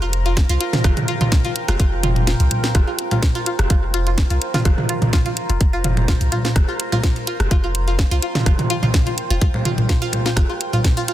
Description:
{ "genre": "minimal techno", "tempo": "126 BPM", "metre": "4/4", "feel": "swing 54% on 16ths", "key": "unclear", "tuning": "A4 = 440 Hz", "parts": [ { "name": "string-like resonator pluck", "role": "riff", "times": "0.0-11.1 s", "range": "C4 to F4", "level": "-26 LUFS", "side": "left 1 dB", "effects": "chorus, sidechain pumping, digital delay" }, { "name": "punchy sub bass", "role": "bass", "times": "0.0-10.5 s", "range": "F1 to C2", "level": "-20 LUFS", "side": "equal", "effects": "tube saturation, sidechain pumping" }, { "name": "deep dark ambient pad", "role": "texture", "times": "0.0-11.1 s", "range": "F4 to Bb5", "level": "-28 LUFS", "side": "right 2 dB", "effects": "chorus, built-in reverb, sidechain pumping" }, { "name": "garage drum kit", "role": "drums", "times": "0.1-11.1 s", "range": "hi-hat, snare drum", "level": "-25 LUFS", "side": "equal", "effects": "none" }, { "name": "electronic kick drum", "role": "drums", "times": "0.4-10.9 s", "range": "none", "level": "-16 LUFS", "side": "equal", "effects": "none" }, { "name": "garage drum kit", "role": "percussion", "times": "0.7-10.8 s", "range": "congas, rim click, toms", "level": "-21 LUFS", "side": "equal", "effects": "soft clipping on snare" } ], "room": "little or no reverb", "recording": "dense, heavily limited modern master", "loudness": "-16 LUFS", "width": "side -13 dB against mid", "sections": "0.0-11.1 A section", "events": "kick drops out 2.3-2.7", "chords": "0.0 Fsus4" }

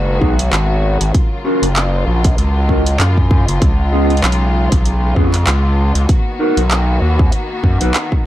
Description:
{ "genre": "glitch hop", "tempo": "97 BPM", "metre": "4/4", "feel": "swing 56% on 16ths", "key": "unclear", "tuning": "A4 = 439 Hz", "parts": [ { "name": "rich studio string section", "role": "sustained chords", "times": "0.0-8.3 s", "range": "C#3 to F#4", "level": "-22 LUFS", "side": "left 2 dB", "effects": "vintage 12-bit sampler grit, sidechain pumping" }, { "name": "gritty driven synth bass", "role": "bass", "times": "0.0-7.9 s", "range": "F#1 to F#2", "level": "-14 LUFS", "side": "equal", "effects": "none" }, { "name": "mellow electric guitar", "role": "stabs", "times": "0.2-7.9 s", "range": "B3 to B4", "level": "-20 LUFS", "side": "equal", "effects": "vintage 12-bit sampler grit, sidechain pumping, tape echo" }, { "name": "electronic kick drum", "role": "drums", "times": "0.2-8.2 s", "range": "none", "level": "-15 LUFS", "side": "equal", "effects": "none" }, { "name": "pop drum kit", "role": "drums", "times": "0.4-8.1 s", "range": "handclaps, hi-hat", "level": "-19 LUFS", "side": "right 1 dB", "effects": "none" } ], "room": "digital ambience", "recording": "none", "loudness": "-12 LUFS", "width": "side -14 dB against mid", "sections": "0.0-8.3 A section", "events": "none", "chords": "0.0 G#m7; 1.1 F#maj7; 3.6 C#7; 6.1 Bmaj7" }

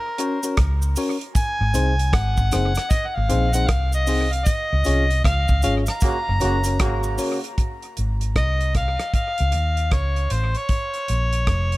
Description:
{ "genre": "roots reggae", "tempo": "77 BPM", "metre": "4/4", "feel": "swing 63% on 16ths", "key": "Ab mixolydian", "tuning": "A4 = 440 Hz", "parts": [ { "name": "mellow harmonica", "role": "melody", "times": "0.0-11.8 s", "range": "Bb4 to Bb5", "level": "-25 LUFS", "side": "equal", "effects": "tape echo" }, { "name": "reed electric piano", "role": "stabs", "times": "0.2-7.4 s", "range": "C4 to Db5", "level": "-27 LUFS", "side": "left 2 dB", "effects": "harmonic tremolo" }, { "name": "damped 70s drum kit", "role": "drums", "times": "0.2-11.8 s", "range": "hi-hat, kick drum, rim click", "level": "-23 LUFS", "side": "equal", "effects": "none" }, { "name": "cabasa", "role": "percussion", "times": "0.2-7.4 s", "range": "none", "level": "-34 LUFS", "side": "right 2 dB", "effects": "none" }, { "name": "vintage muted fingered electric bass", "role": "bass", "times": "0.6-11.8 s", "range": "F1 to Eb2", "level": "-21 LUFS", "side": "equal", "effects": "none" }, { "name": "mellow trombone section", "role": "second line", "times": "6.0-7.4 s", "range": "Db3 to Gb4", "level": "-28 LUFS", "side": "right 2 dB", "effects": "tape echo" } ], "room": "little or no reverb", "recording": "none", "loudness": "-19 LUFS", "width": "side -19 dB against mid", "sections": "0.0-7.6 A section; 7.6-11.8 B section", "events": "band accent 4.5-7.6", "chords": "0.0 Gb; 1.4 Ab; 4.5 Db; 6.0 Gb; 7.6 Ab; 9.1 Db; 10.7 Bbm" }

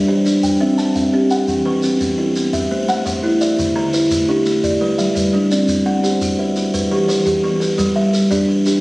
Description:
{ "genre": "southern african traditional, mbira-style interlocking cycle", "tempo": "114 BPM (dotted quarters)", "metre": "12/8", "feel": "straight", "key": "G major", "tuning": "A4 = 441 Hz", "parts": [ { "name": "buzzing kalimba", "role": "arpeggios", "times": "0.0-8.8 s", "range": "D3 to G5", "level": "-15 LUFS", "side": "equal", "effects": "none" }, { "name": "buzzing kalimba", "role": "arpeggios", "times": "0.0-8.8 s", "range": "D3 to A5", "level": "-22 LUFS", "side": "right 1 dB", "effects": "none" }, { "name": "shekere", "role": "percussion", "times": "0.3-8.8 s", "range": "none", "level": "-27 LUFS", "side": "equal", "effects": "none" } ], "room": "wet recital hall reverb, RT60 1.4 s", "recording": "recorded on a phone in the room, studio reverb, compression", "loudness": "-14 LUFS", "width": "side -22 dB against mid", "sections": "0.0-7.8 A section; 7.8-8.8 B section", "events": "none", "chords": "0.4 C; 1.5 Em; 2.5 Am; 3.6 D5; 4.6 G; 5.7 Bm; 6.7 Em; 7.8 G" }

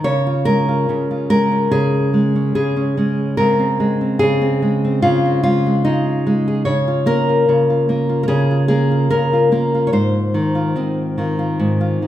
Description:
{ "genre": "folk, solo fingerstyle acoustic guitar", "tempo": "73 BPM", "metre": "4/4", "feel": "rubato", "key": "Db major", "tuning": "A4 = 440 Hz", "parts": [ { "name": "nylon-string guitar", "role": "solo", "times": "0.0-12.1 s", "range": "Ab2 to Db5", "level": "-14 LUFS", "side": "equal", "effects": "none" } ], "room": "wet recital hall reverb, RT60 1.7 s", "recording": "recorded in a church or concert hall", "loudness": "-14 LUFS", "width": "side -12 dB against mid", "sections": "0.0-12.1 A section", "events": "none", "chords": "0.0 Db; 3.4 Ab/Db; 6.7 Bbm/Db; 9.9 Ab6" }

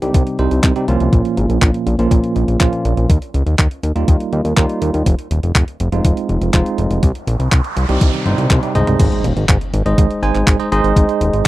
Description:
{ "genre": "italo disco", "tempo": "122 BPM", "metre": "4/4", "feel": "straight", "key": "unclear", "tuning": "A4 = 437 Hz", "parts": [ { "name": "bell-like tine electric piano", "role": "stabs", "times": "0.0-11.5 s", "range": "Bb2 to Ab5", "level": "-18 LUFS", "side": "right 2 dB", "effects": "medium stereo tremolo, tape echo" }, { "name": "fat analog bass", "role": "bass", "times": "0.0-11.5 s", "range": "Eb1 to Eb2", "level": "-17 LUFS", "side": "equal", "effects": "none" }, { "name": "clean 12-bit digital drum machine", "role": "drums", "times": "0.0-11.4 s", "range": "crash cymbal, handclaps, hi-hat, toms", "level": "-21 LUFS", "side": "equal", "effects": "overdrive" }, { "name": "electronic kick drum", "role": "drums", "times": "0.1-11.5 s", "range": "none", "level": "-14 LUFS", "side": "equal", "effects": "overdrive" }, { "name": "noise sweep and impact", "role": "sound effects", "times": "7.3-11.0 s", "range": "none", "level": "-25 LUFS", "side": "equal", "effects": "none" } ], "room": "little or no reverb", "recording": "dry, close 1970s-style studio recording, faint mains hum", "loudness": "-13 LUFS", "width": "side -16 dB against mid", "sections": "0.0-9.0 A section; 9.0-11.5 B section", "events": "noise sweep 7.3-9.0; drum fill 8.0-9.0; impact 9.0-11.0", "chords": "0.0 Cm; 1.1 Bbm; 3.1 Ebadd9; 5.1 Fm7; 7.0 Cm; 9.0 Ab" }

